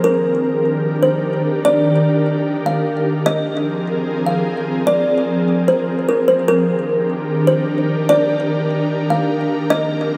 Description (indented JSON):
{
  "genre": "hip hop",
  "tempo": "149 BPM",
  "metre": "4/4",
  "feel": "half-time",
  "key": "Eb major",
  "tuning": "A4 = 440 Hz",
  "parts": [
    { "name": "kalimba", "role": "melody", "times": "0.0-10.2 s", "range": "Bb4 to F5", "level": "-21 LUFS", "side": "equal", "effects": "delay" },
    { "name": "ethereal airy pad", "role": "sustained chords", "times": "0.0-10.2 s", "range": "Eb3 to Bb4", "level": "-20 LUFS", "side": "equal", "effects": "ensemble chorus, built-in reverb" }
  ],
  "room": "wet huge ambient reverb, RT60 4.6 s",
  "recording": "none",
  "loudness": "-17 LUFS",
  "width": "mono",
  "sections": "0.0-6.5 A section; 6.5-10.2 B section",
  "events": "none",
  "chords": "0.0 Ebmaj7; 3.3 Ab69; 6.5 Ebmaj7"
}